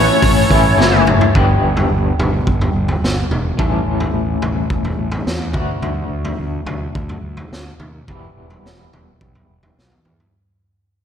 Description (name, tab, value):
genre	psychedelic rock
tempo	107 BPM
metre	4/4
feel	straight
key	E dorian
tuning	A4 = 439 Hz
part	overdriven slide guitar	melody	0.0-1.0 s	C#5	-18 LUFS	equal	ensemble chorus, ping-pong delay
part	combo organ	sustained chords	0.0-1.3 s	A4 to A5	-26 LUFS	right 4 dB	none
part	electric guitar through a small old amp	riff	0.0-10.3 s	E2 to A4	-19 LUFS	left 3 dB	tremolo
part	fuzz fingered electric bass	bass	0.0-10.3 s	E1 to E2	-21 LUFS	right 1 dB	overdrive
part	raw garage drum kit	drums	0.2-10.3 s	hi-hat, kick drum, snare drum, toms	-19 LUFS	right 1 dB	none
part	congas	percussion	0.5-1.3 s	none	-29 LUFS	left 2 dB	none
room	moderate lush hall reverb, RT60 2.5 s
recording	dreamy mix soaked in reverb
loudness	-14 LUFS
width	side -8 dB against mid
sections	0.0-1.3 A section; 1.3-10.3 B section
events	drum fill 0.8-1.3, 9.8-10.3; fade-out 1.3-10.3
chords	0.0 A; 1.3 G; 3.6 A; 5.5 D; 8.1 Em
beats	0.22 0.78 | 1.34 1.90 2.46 3.02 | 3.58 4.14 4.70 5.26 | 5.82 6.38 6.94 7.50 | 8.07 8.63 9.19 9.76